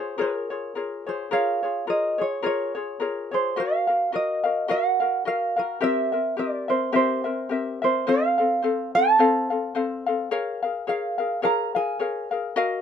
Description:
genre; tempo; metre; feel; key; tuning
hawaiian; 107 BPM; 4/4; swing 56% on 8ths; Bb minor; A4 = 439 Hz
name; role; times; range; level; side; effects
tenor ukulele; melody; 0.0-12.3 s; Bb4 to Bb5; -24 LUFS; right 4 dB; none
ukulele; accompaniment; 0.0-12.8 s; C4 to F5; -25 LUFS; left 5 dB; none
room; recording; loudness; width
light reverb; minimal, uncompressed stereo recording; -22 LUFS; side -8 dB against mid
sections
0.0-1.3 A section; 1.3-12.8 A section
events
none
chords
0.0 Bbm7; 3.6 Ebmadd9; 5.8 C7; 8.1 F; 10.3 Bbm7

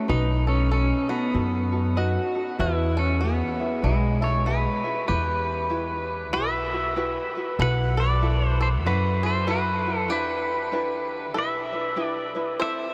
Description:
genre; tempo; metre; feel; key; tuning
Hawaiian; 96 BPM; 4/4; swing 61% on 8ths; E major, E minor from 5.1 s; A4 = 440 Hz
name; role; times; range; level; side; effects
pedal steel guitar; melody; 0.0-12.9 s; G#3 to F#5; -28 LUFS; equal; subtle chorus, analog delay
bluegrass banjo; second line; 0.0-12.9 s; E4 to D#5; -36 LUFS; equal; none
tenor ukulele; accompaniment; 0.0-12.9 s; C4 to E5; -34 LUFS; equal; none
upright bass; bass; 0.1-12.9 s; A1 to F#2; -27 LUFS; equal; none
room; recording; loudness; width
wet huge ambient reverb, RT60 7.8 s; dreamy mix soaked in reverb; -25 LUFS; mono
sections
0.0-5.1 A section; 5.1-12.9 B section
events
none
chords
0.1 B7; 2.6 E; 5.1 Emadd9; 7.6 B7sus4; 10.1 Em7

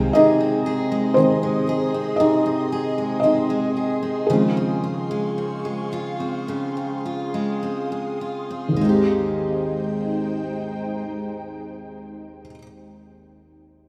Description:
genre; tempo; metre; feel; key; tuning
pop; 50-59 BPM; 4/4; straight; Ab major; A4 = 441 Hz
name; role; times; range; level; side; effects
felt-muted upright piano; accompaniment; 0.0-13.9 s; Ab1 to Eb5; -23 LUFS; equal; none
ethereal airy pad; sustained chords; 0.0-12.5 s; Ab3 to Eb6; -33 LUFS; equal; ensemble chorus, built-in reverb
picked steel-string acoustic guitar; arpeggios; 0.0-12.7 s; C3 to Ab4; -27 LUFS; equal; none
room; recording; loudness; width
wet lush hall reverb, RT60 2.6 s; rough home demo mix; -22 LUFS; mono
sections
0.0-8.8 A section; 8.8-13.6 B section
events
felt piano solo 0.0-8.8; slowing down 0.1-8.8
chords
0.0 Ab/C; 4.3 Dbmaj7; 8.8 Abmaj7

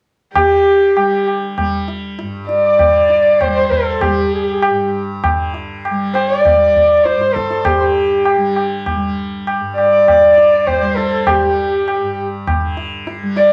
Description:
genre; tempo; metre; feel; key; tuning
indian classical, Hindustani; 99 BPM; 3/4; straight; unclear; A4 = 445 Hz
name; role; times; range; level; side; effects
dark sarangi; melody; 0.3-13.5 s; G4 to D5; -15 LUFS; equal; none
tanpura; drone; 0.3-13.5 s; G2 to G3; -26 LUFS; equal; none
tabla; percussion; 0.4-13.5 s; none; -21 LUFS; equal; none
pedal harmonium; second line; 0.5-12.3 s; G4 to D5; -24 LUFS; equal; none
room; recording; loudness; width
wet studio reverb, RT60 0.6 s; none; -14 LUFS; mono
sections
0.3-13.5 A section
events
speeding up 0.3-13.5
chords
none

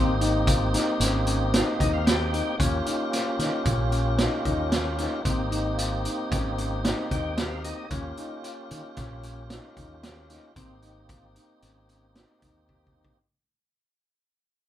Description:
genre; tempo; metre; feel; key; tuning
progressive instrumental, band music in an uneven meter; 113 BPM; 5/4; straight; unclear; A4 = 439 Hz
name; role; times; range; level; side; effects
tonewheel organ; accompaniment; 0.0-13.2 s; Bb3 to G5; -30 LUFS; right 1 dB; overdrive, fast rotary speaker
warm concert grand piano; arpeggios; 0.0-13.1 s; C4 to G4; -32 LUFS; left 4 dB; none
fingered electric bass; bass; 0.0-13.0 s; Ab1 to Eb3; -29 LUFS; equal; none
vintage drum kit; drums; 0.2-13.2 s; hi-hat, kick drum, snare drum; -27 LUFS; right 1 dB; none
room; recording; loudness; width
moderate studio ambience, RT60 0.5 s; band playing live in one room; -23 LUFS; side -11 dB against mid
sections
0.0-13.2 A section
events
fade-out 0.0-13.2; tonewheel organ fill 1.5-2.6, 6.8-7.9; drum fill 12.7-13.2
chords
0.0 Abmaj9; 2.6 Eb7; 5.3 Abmaj9; 7.9 Eb7; 10.6 Abmaj9

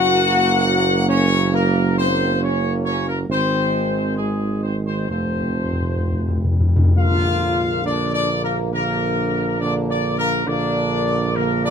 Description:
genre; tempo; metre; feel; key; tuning
classical, ceremonial fanfare; 68 BPM; 4/4; straight; Bb major from 7.0 s; A4 = 439 Hz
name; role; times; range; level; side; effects
warm trumpet section; melody; 0.0-11.7 s; Ab4 to Gb5; -22 LUFS; left 2 dB; none
clear trombone section; sustained chords; 0.0-11.7 s; D3 to Bb3; -26 LUFS; right 2 dB; none
mellow French horn section; sustained chords; 0.0-11.7 s; Ab3 to Gb4; -25 LUFS; left 3 dB; none
mellow tuba; bass; 0.0-11.7 s; F1 to Bb1; -22 LUFS; right 4 dB; none
timpani; percussion; 5.1-6.9 s; F2; -19 LUFS; left 1 dB; none
room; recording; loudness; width
light reverb; close, detailed microphones; -17 LUFS; side -7 dB against mid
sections
0.0-7.0 A section; 7.0-11.7 B section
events
timpani fill 5.1-7.0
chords
0.0 Gb; 3.3 Ab; 5.1 F; 7.0 Bb

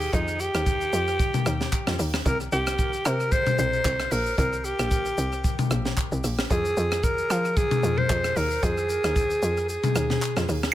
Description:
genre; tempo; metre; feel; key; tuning
amapiano; 113 BPM; 4/4; swing 55% on 16ths; unclear; A4 = 440 Hz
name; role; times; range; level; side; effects
growling alto saxophone; melody; 0.0-10.4 s; Eb4 to C5; -26 LUFS; equal; analog delay
tight log drum bass; bass; 0.0-10.7 s; Bb1 to F3; -28 LUFS; equal; none
crisp fusion drum kit; drums; 0.0-10.7 s; handclaps, hi-hat, kick drum, rim click, shaker, snare drum, toms; -26 LUFS; left 1 dB; analog delay
room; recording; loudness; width
light reverb, small room reverb; echo-heavy mix; -22 LUFS; side -13 dB against mid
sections
0.0-10.7 A section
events
drop 0.0-10.7; kick muted 9.7-10.7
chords
0.0 F7sus2; 2.3 C5; 6.5 Fm7

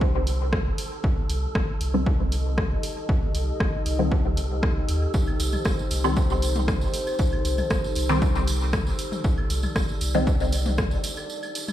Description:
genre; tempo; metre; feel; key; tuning
dub techno; 117 BPM; 4/4; straight; C dorian; A4 = 440 Hz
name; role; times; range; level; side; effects
dark analog pad; sustained chords; 0.0-11.7 s; Eb4 to Eb5; -33 LUFS; left 2 dB; chorus, phaser, sidechain pumping
filtered dub chord stab; stabs; 0.0-11.7 s; Eb3 to C4; -28 LUFS; left 1 dB; phaser, sidechain pumping, dub echo
warm sub bass; bass; 0.0-11.0 s; G1 to Eb2; -26 LUFS; equal; sidechain pumping
electronic kick drum; drums; 0.0-10.9 s; none; -25 LUFS; equal; none
wind-like tuned noise texture; texture; 0.0-11.7 s; A4; -37 LUFS; right 3 dB; built-in reverb, sidechain pumping
punchy analog drum machine; drums; 0.3-11.7 s; hi-hat, rim click; -33 LUFS; left 1 dB; dub echo
tambourine; percussion; 5.1-11.7 s; none; -36 LUFS; right 4 dB; none
electronic claves and toms; percussion; 5.3-11.7 s; none; -36 LUFS; left 2 dB; overdrive, sidechain pumping on perc, sidechain pumping on toms, dub echo
room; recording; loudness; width
digital ambience; played on a big sound system in a bare room, stone room reverb; -22 LUFS; side -12 dB against mid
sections
0.0-11.7 A section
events
break 11.3-11.7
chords
0.0 Cm

